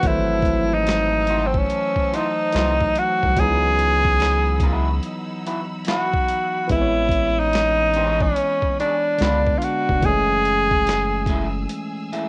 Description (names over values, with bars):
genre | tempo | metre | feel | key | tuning
R&B, neo-soul | 72 BPM | 4/4 | swing 62% on 16ths | C# minor | A4 = 442 Hz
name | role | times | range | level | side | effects
breathy tenor saxophone | melody | 0.0-11.7 s | B#3 to G#4 | -22 LUFS | equal | cassette tape
barky tine electric piano | accompaniment | 0.0-12.3 s | D3 to C#5 | -30 LUFS | equal | cassette tape
clear studio string section | sustained chords | 0.0-12.3 s | D#4 to E6 | -40 LUFS | equal | cassette tape
rubbery square bass | bass | 0.0-11.7 s | E#1 to C#2 | -26 LUFS | equal | none
boom bap sampler-style drum kit | drums | 0.0-12.3 s | handclaps, hi-hat, kick drum, snare drum | -27 LUFS | equal | cassette tape
electric guitar at the edge of break-up | second line | 0.9-12.3 s | A3 to C#5 | -32 LUFS | equal | cassette tape
room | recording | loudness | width
little or no reverb | home recording on cassette, nothing above 10.3 kHz | -20 LUFS | mono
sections
0.0-12.3 A section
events
none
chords
0.0 G#7b9b13; 3.4 C#m11; 6.7 Amaj9#11; 9.2 C#7b9; 10.0 F#m9